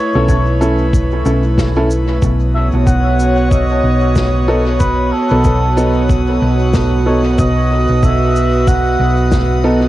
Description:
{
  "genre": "ambient dub",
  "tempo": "93 BPM",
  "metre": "4/4",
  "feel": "swing 58% on 16ths",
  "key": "B mixolydian",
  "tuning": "A4 = 441 Hz",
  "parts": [
    { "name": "trumpet with cup mute", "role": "melody", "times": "0.0-9.6 s", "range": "A4 to F#5", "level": "-20 LUFS", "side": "equal", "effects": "cassette tape, dub echo" },
    { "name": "airy breathy pad", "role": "sustained chords", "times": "0.0-9.9 s", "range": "A3 to C#5", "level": "-18 LUFS", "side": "right 2 dB", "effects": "chorus, cassette tape" },
    { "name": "warm upright piano", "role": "stabs", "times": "0.2-9.8 s", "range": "B3 to A4", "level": "-20 LUFS", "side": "equal", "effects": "cassette tape, dub echo" },
    { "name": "hollow-body short-scale fingered electric bass", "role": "bass", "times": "0.2-9.9 s", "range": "B1", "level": "-15 LUFS", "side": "equal", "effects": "transformer saturation" },
    { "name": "cabasa and snare drum", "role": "drums", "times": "0.3-9.5 s", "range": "none", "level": "-26 LUFS", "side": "left 2 dB", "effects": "cassette tape, dub echo" },
    { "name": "electronic kick drum", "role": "drums", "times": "0.3-9.5 s", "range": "none", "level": "-16 LUFS", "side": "equal", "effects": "overdrive, cassette tape" },
    { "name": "drifting glass-harmonics texture", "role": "texture", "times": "2.5-9.9 s", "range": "F#4 to D#6", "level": "-27 LUFS", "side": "right 3 dB", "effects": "chorus, built-in reverb, cassette tape" }
  ],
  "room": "light reverb",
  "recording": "home recording on cassette",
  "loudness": "-11 LUFS",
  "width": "side -15 dB against mid",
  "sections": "0.0-9.9 A section",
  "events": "none",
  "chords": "0.0 A/B; 2.2 B"
}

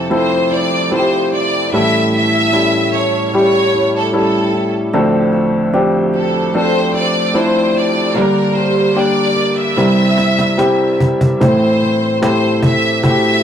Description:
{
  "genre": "pop ballad",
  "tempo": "74 BPM",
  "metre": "4/4",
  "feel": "straight",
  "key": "unclear",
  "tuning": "A4 = 440 Hz",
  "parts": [
    { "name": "bright studio violin section", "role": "melody", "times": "0.0-13.4 s", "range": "A4 to E5", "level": "-17 LUFS", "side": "equal", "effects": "tape echo" },
    { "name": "clear upright piano", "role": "accompaniment", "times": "0.0-13.4 s", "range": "C2 to C5", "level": "-14 LUFS", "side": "left 1 dB", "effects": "none" },
    { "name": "fingerpicked steel-string acoustic guitar", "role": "arpeggios", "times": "0.0-13.4 s", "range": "A2 to Bb4", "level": "-22 LUFS", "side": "right 4 dB", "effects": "none" },
    { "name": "cajon", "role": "drums", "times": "9.8-13.2 s", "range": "none", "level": "-16 LUFS", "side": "equal", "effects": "none" }
  ],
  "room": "moderate studio reverb, RT60 0.5 s",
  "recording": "rough rehearsal-room recording, warm saturation",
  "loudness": "-12 LUFS",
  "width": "side -8 dB against mid",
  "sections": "0.0-11.4 A section; 11.4-13.4 B section",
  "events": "drum fill 9.8-11.4",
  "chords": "0.0 Fmaj7; 1.7 A7; 4.9 Dm7; 8.2 Gm; 9.8 C7; 11.4 Am"
}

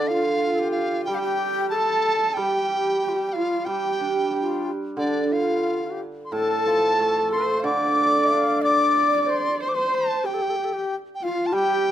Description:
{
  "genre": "chinese traditional, Chinese chamber ensemble",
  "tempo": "92 BPM",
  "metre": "4/4",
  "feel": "rubato",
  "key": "D yu mode",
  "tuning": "A4 = 439 Hz",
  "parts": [
    { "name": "mellow large dizi", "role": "melody", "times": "0.0-11.9 s", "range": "D5 to D6", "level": "-24 LUFS", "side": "equal", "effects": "none" },
    { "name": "breathy xiao", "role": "second line", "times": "0.0-11.9 s", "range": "D4 to F5", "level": "-28 LUFS", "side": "left 7 dB", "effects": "none" },
    { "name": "dark horsehead fiddle", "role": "second line", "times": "0.0-11.9 s", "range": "D4 to D5", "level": "-27 LUFS", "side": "right 4 dB", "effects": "none" },
    { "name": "hammered dulcimer", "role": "accompaniment", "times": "0.0-11.9 s", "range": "A2 to G4", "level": "-26 LUFS", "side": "right 3 dB", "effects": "none" }
  ],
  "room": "light reverb",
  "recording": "close, detailed microphones",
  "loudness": "-20 LUFS",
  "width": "side -11 dB against mid",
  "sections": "0.0-11.9 A section",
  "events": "none",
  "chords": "none"
}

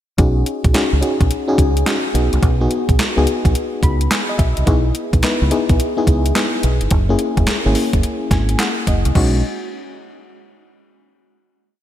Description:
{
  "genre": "R&B, new jack swing",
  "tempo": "107 BPM",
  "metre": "4/4",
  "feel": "swing 65% on 16ths",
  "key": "B major",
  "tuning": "A4 = 437 Hz",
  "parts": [
    { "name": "FM electric piano with tremolo", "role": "accompaniment", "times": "0.2-9.4 s", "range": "G#3 to B5", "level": "-19 LUFS", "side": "left 2 dB", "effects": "none" },
    { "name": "deep dub fingered electric bass", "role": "bass", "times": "0.2-9.4 s", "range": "F#1 to C#2", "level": "-17 LUFS", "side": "right 1 dB", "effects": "none" },
    { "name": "crisp 8-bit digital drum machine", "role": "drums", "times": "0.2-9.3 s", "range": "crash cymbal, handclaps, hi-hat, kick drum, snare drum", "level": "-18 LUFS", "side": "equal", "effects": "overdrive, gated reverb" }
  ],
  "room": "light reverb, digital ambience",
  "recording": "bright 1980s-style digital production",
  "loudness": "-14 LUFS",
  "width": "side -12 dB against mid",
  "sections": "0.2-9.2 verse; 9.2-11.4 final chord",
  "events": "FM electric piano fill 3.5-4.7, 8.0-9.2",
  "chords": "0.2 B6; 2.1 B69; 4.7 C#m7/B; 6.9 F#7; 9.2 B6"
}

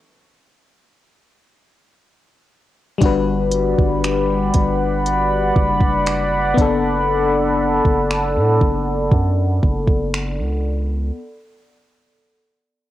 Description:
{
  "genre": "contemporary R&B",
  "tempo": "59 BPM",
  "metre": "4/4",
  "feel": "straight",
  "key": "B minor",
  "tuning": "A4 = 440 Hz",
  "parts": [
    { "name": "FM electric piano", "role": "accompaniment", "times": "3.0-11.2 s", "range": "G3 to B4", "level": "-21 LUFS", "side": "left 6 dB", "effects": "chorus, low-pass filter, cassette tape" },
    { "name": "chorused pulse-width pad", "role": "sustained chords", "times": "3.5-11.1 s", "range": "G3 to B5", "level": "-20 LUFS", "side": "right 1 dB", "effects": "low-pass filter, cassette tape" },
    { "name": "long sustained 808-style bass", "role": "bass", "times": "3.0-11.1 s", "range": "F#1 to A2", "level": "-22 LUFS", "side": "right 1 dB", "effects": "none" },
    { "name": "smooth R&B drum kit", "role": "drums", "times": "3.0-10.4 s", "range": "finger snaps, hi-hat, kick drum", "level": "-18 LUFS", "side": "right 1 dB", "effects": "none" }
  ],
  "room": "light reverb, digital ambience",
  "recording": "home recording on cassette",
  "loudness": "-15 LUFS",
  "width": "side -14 dB against mid",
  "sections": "0.0-3.0 A section; 3.0-11.2 B section",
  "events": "stop 0.0-3.0; filter sweep 3.0-11.2",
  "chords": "0.0 N.C.; 3.0 Gmaj7; 6.6 Bm7/F#"
}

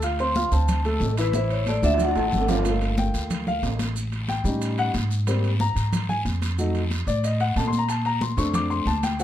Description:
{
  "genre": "Afro-Cuban jazz",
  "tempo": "183 BPM",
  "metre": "4/4",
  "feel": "straight",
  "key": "G minor",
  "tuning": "A4 = 440 Hz",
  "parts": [
    { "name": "warm grand piano", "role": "accompaniment", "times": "0.0-9.2 s", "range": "D3 to F6", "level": "-26 LUFS", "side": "left 2 dB", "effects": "none" },
    { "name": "upright bass", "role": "bass", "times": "0.0-9.2 s", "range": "G1 to Bb2", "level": "-24 LUFS", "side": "equal", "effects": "none" },
    { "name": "congas", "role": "percussion", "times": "0.0-9.2 s", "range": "none", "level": "-30 LUFS", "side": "left 1 dB", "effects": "none" },
    { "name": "guiro", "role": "percussion", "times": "0.0-9.2 s", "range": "none", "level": "-39 LUFS", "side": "left 4 dB", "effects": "none" },
    { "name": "maracas", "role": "percussion", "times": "0.0-9.2 s", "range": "none", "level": "-41 LUFS", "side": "right 7 dB", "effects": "none" },
    { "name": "timbales", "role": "percussion", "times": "0.0-9.2 s", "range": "none", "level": "-33 LUFS", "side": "right 5 dB", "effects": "none" },
    { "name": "vibraphone with medium mallets", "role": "melody", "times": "0.2-2.5 s", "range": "B4 to C6", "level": "-26 LUFS", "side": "left 1 dB", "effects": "none" }
  ],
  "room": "light reverb",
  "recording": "dark, warm production",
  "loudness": "-21 LUFS",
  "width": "side -11 dB against mid",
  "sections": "0.0-2.7 A section; 2.7-9.2 A section",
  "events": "vibraphone solo 0.0-2.7; drum fill 1.3-2.7; grand piano solo 2.7-9.2",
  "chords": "0.0 Dm7; 1.3 A5; 2.0 D; 2.7 Gm9; 4.0 A7#11; 5.3 Abmaj9; 6.6 F7b9; 7.9 Bbmaj9"
}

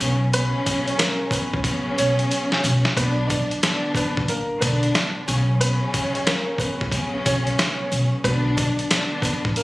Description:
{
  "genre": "hip hop, boom-bap hip-hop",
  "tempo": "91 BPM",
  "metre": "4/4",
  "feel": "swing 62% on 16ths",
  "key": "B harmonic minor",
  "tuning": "A4 = 441 Hz",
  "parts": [
    { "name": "warm upright piano", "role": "melody", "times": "0.0-9.6 s", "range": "A#3 to D5", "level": "-28 LUFS", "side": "right 1 dB", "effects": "slapback echo" },
    { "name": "warm studio string section", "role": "accompaniment", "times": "0.0-9.6 s", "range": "B2 to D4", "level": "-25 LUFS", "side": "left 1 dB", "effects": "cassette tape" },
    { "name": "upright bass", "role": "bass", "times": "0.0-9.5 s", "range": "A1 to C#2", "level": "-23 LUFS", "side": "equal", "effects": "none" },
    { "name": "boom bap sampler-style drum kit", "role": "drums", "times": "0.0-9.6 s", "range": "hi-hat, kick drum, rim click, snare drum", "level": "-23 LUFS", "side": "equal", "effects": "none" },
    { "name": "sleigh bells", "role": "percussion", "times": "0.0-9.6 s", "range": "none", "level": "-33 LUFS", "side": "left 1 dB", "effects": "none" }
  ],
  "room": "light reverb",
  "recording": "recorded on a phone in the room, studio reverb",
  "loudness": "-19 LUFS",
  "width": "side -19 dB against mid",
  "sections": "0.0-9.6 A section",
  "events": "drum fill 1.6-3.0",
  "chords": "0.0 F#sus4/B; 3.0 Bm; 5.3 F#sus4/B; 8.2 Bm"
}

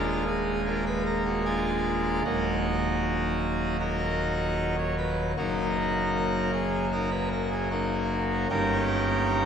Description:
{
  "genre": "classical, chorale-style piece for pipe organ",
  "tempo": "76 BPM",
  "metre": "4/4",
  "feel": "rubato",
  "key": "Eb minor",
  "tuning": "A4 = 435 Hz",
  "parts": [
    { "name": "pipe organ, full organ", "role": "solo", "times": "0.0-9.5 s", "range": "Eb1 to Db5", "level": "-25 LUFS", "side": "equal", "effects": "none" }
  ],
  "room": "wet cathedral reverb, RT60 6.6 s",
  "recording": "none",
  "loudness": "-25 LUFS",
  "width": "side -7 dB against mid",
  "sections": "0.0-9.5 A section",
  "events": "none",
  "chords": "0.0 Bb7/Eb; 2.3 Ebm; 5.4 Ebm/Gb; 8.5 Eb7/G"
}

